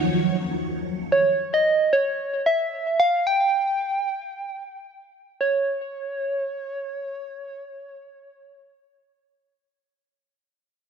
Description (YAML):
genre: amapiano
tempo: free time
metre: none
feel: none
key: unclear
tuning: A4 = 440 Hz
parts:
  - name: soft struck synth lead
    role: melody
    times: 0.0-8.6 s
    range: Db5 to G5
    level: -22 LUFS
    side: right 1 dB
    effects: chorus, ping-pong delay
  - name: string machine, full ensemble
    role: sustained chords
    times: 0.0-1.1 s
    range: Eb2 to Db5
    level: -24 LUFS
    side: right 1 dB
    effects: phaser, ensemble chorus
room: light reverb, digital ambience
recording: none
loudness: -21 LUFS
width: side -6 dB against mid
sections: 0.0-5.4 A section; 5.4-9.7 B section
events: none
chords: 0.0 Ebm9; 1.1 N.C.